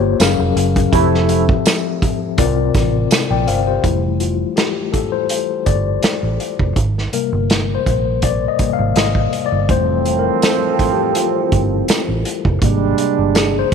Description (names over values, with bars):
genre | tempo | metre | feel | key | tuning
lush 1970s-style soul | 82 BPM | 4/4 | swing 54% on 16ths | F major | A4 = 439 Hz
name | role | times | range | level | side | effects
mellow tine electric piano | accompaniment | 0.0-13.7 s | C3 to G5 | -18 LUFS | left 11 dB | medium stereo tremolo
vintage muted fingered electric bass | bass | 0.0-13.7 s | F1 to C2 | -19 LUFS | right 2 dB | none
vintage drum kit | drums | 0.2-13.7 s | hi-hat, kick drum, snare drum | -18 LUFS | right 2 dB | none
tambourine | percussion | 0.2-3.3, 10.4-13.5 s | none | -28 LUFS | right 20 dB | none
clear trombone section | stabs | 0.9-1.5, 9.7-13.7 s | A2 to E4 | -19 LUFS | right 15 dB | slapback echo
room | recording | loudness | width
light reverb, small room ambience | 1960s-style stereo with parts hard left and right, faint mains hum | -14 LUFS | side -6 dB against mid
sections
0.0-3.8 A section; 3.8-13.7 B section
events
band accent 0.9-3.8; tine electric piano solo 3.8-13.7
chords
0.2 Gbmaj7; 0.9 Fmaj7; 2.4 C7sus4; 3.8 Fmaj7; 6.8 Abmaj7; 9.7 Fmaj7; 12.6 Abmaj7